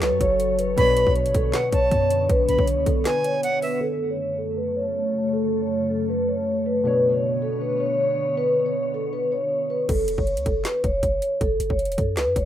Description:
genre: hip hop, trap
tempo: 158 BPM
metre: 4/4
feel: half-time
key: F# minor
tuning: A4 = 440 Hz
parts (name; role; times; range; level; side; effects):
- vibraphone with soft mallets; melody; 0.0-12.4 s; A4 to C#5; -22 LUFS; equal; low-pass filter
- dark baby grand piano; accompaniment; 0.0-3.8, 6.8-9.9 s; B2 to C#5; -30 LUFS; equal; low-pass filter
- glassy FM pad; sustained chords; 0.0-9.9 s; F#2 to C#5; -28 LUFS; left 1 dB; ensemble chorus, built-in reverb, low-pass filter
- clean 808-style bass; bass; 0.0-3.0, 9.9-12.4 s; E1 to F#2; -26 LUFS; equal; none
- trap drum kit; drums; 0.0-3.7, 9.9-12.4 s; crash cymbal, handclaps, hi-hat, kick drum, snare drum; -26 LUFS; equal; none
- breathy bright jazz flute; second line; 0.8-3.8 s; E5 to B5; -29 LUFS; right 4 dB; ping-pong delay
room: small room ambience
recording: rough home demo mix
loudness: -20 LUFS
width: side -11 dB against mid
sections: 0.0-3.8 A section; 3.8-9.9 B section; 9.9-12.4 C section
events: break 3.1-3.8; filter sweep 3.8-9.9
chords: 0.0 F#m; 0.8 Bmadd9; 3.8 F#m; 6.9 Bmadd9; 9.9 F#5

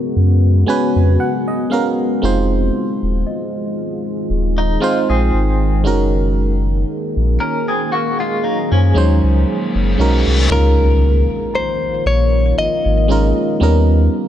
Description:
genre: contemporary R&B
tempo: 58 BPM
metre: 4/4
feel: swing 54% on 16ths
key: Db major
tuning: A4 = 441 Hz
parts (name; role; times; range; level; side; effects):
- FM electric piano; accompaniment; 0.0-14.3 s; Gb3 to Ab5; -20 LUFS; right 3 dB; chorus
- deep dark ambient pad; sustained chords; 0.0-14.3 s; Db3 to Ab4; -22 LUFS; left 2 dB; chorus, built-in reverb
- warm sub bass; bass; 0.2-14.1 s; Eb1 to Gb2; -14 LUFS; equal; none
- worn celesta; texture; 3.3-14.1 s; Eb5 to Bb5; -33 LUFS; left 4 dB; stereo widening, tape echo
- clean electric guitar; arpeggios; 4.6-10.2 s; F3 to Bb4; -22 LUFS; left 2 dB; tremolo, tape echo
- reverse cymbal and impact; sound effects; 9.4-14.3 s; none; -26 LUFS; left 2 dB; none
- direct-recorded clean electric guitar; melody; 10.5-14.1 s; Bb4 to Eb5; -20 LUFS; left 3 dB; tape echo
room: little or no reverb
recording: none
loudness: -13 LUFS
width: side -11 dB against mid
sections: 0.0-10.5 A section; 10.5-14.3 B section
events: FM electric piano fill 0.2-2.2; reverse cymbal 9.4-10.5; impact 10.5-14.3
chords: 0.0 Abm11; 2.2 Fm7; 5.8 Gb69; 10.5 Db69; 13.6 Eb7b13

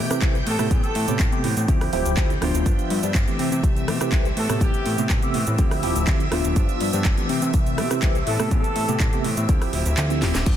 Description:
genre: filtered disco house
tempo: 123 BPM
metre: 4/4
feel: straight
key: unclear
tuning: A4 = 440 Hz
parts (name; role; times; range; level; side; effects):
- tine electric piano; accompaniment; 0.0-10.3 s; C3 to A4; -27 LUFS; equal; slow stereo tremolo, phaser, sidechain pumping
- phased string machine; sustained chords; 0.0-10.6 s; E5 to G6; -32 LUFS; left 1 dB; ensemble chorus, phaser, sidechain pumping
- clean electric guitar; riff; 0.0-10.6 s; E3 to G4; -32 LUFS; right 5 dB; sidechain pumping
- fat analog bass; bass; 0.0-10.6 s; D1 to C3; -25 LUFS; equal; sidechain pumping
- house drum kit; drums; 0.1-10.6 s; cabasa, crash cymbal, handclaps, hi-hat, rim click, snare drum; -29 LUFS; right 1 dB; sidechain pumping on hats, small room reverb, sidechain pumping on perc, sidechain pumping on cymbals
- electronic kick drum; drums; 0.2-10.6 s; none; -21 LUFS; equal; small room reverb
- warm horn section; melody; 0.5-1.4, 4.4-5.1, 8.3-9.2 s; G4 to A4; -30 LUFS; left 1 dB; sidechain pumping, ping-pong delay
room: light reverb, digital ambience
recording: dense, heavily limited modern master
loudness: -19 LUFS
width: side -10 dB against mid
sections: 0.0-10.6 A section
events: kick drops out 10.0-10.5; drum fill 10.2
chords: 0.5 Am9; 1.7 Dm11; 2.7 G7; 3.4 C6; 4.4 Am9; 5.6 Dm11; 6.6 G7; 7.3 C6; 8.3 Am9; 9.5 Dm11

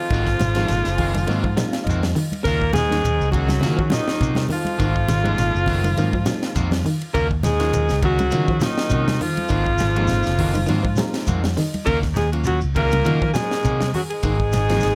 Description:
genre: afrobeat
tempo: 102 BPM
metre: 4/4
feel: swing 55% on 16ths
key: Eb dorian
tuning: A4 = 437 Hz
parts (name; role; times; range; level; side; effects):
- bright alto saxophone; melody; 0.0-14.9 s; Eb4 to Bb4; -27 LUFS; equal; tape echo
- raspy baritone saxophone; second line; 0.0-14.9 s; Eb2 to Bb2; -35 LUFS; equal; none
- raspy tenor saxophone; second line; 0.0-14.9 s; Eb3 to Bb3; -33 LUFS; equal; none
- electric guitar at the edge of break-up; arpeggios; 0.1-14.9 s; Db3 to Gb3; -31 LUFS; equal; analog chorus, tape echo
- electric guitar at the edge of break-up; stabs; 0.1-14.8 s; Eb3 to Gb4; -34 LUFS; equal; none
- fingered electric bass; bass; 0.1-14.9 s; Gb1 to Eb3; -24 LUFS; equal; none
- tight funk drum kit; drums; 0.1-14.9 s; hi-hat, kick drum, ride cymbal, snare drum; -30 LUFS; equal; none
- shekere; percussion; 0.1-14.9 s; none; -32 LUFS; equal; none
- reed electric piano; accompaniment; 0.4-14.9 s; Gb3 to Bb5; -32 LUFS; equal; none
- congas; percussion; 0.4-14.8 s; none; -29 LUFS; equal; none
room: light reverb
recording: none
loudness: -20 LUFS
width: mono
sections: 0.0-14.9 A section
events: reed electric piano fill 0.7-2.5, 10.7-11.9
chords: 0.1 Ab9; 2.5 Ebm7; 4.8 Ab9; 7.1 Ebm7; 9.5 Ab9; 11.9 Ebm7; 14.2 Ab9

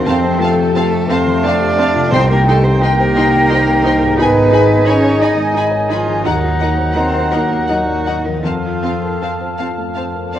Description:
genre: cinematic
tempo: 52-60 BPM (dotted quarters)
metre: 6/8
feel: rubato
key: unclear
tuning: A4 = 441 Hz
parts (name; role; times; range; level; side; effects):
- rich cello; melody; 0.0-9.6 s; Eb4 to Eb5; -19 LUFS; right 2 dB; none
- warm clarinet; second line; 0.0-10.3 s; A3 to Eb4; -24 LUFS; equal; none
- felt-muted upright piano; accompaniment; 0.0-10.4 s; C2 to Eb5; -22 LUFS; left 1 dB; none
- mellow French horn section; sustained chords; 0.0-10.3 s; C3 to Bb4; -22 LUFS; left 3 dB; none
- concert harp; arpeggios; 0.0-10.4 s; Ab2 to Bb4; -24 LUFS; left 5 dB; none
- rich studio cello section; bass; 0.0-9.6 s; Eb3 to Eb4; -22 LUFS; right 3 dB; none
- warm studio violin section; melody; 0.1-10.4 s; D5 to C6; -31 LUFS; left 3 dB; none
- clear oboe; second line; 0.1-10.3 s; Eb5 to G5; -22 LUFS; equal; none
- rich studio violin section; second line; 0.1-10.4 s; F5 to Ab5; -27 LUFS; left 2 dB; none
- small flute group; second line; 0.1-10.3 s; G5 to Bb5; -23 LUFS; left 1 dB; none
- rich studio viola section; accompaniment; 0.1-10.4 s; C4 to Eb4; -25 LUFS; right 2 dB; none
- warm studio double bass section; bass; 0.1-10.4 s; Ab1 to F2; -21 LUFS; right 2 dB; none
- timpani; percussion; 2.1-3.1 s; C3; -22 LUFS; right 1 dB; none
room: wet scoring stage reverb, RT60 1.7 s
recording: worn, warbling old tape, cassette tape, warbly pitch drift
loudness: -12 LUFS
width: side -11 dB against mid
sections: 0.0-10.4 A section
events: none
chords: 0.1 F; 2.1 Cm; 4.2 Abm; 6.3 Ebm; 8.4 F

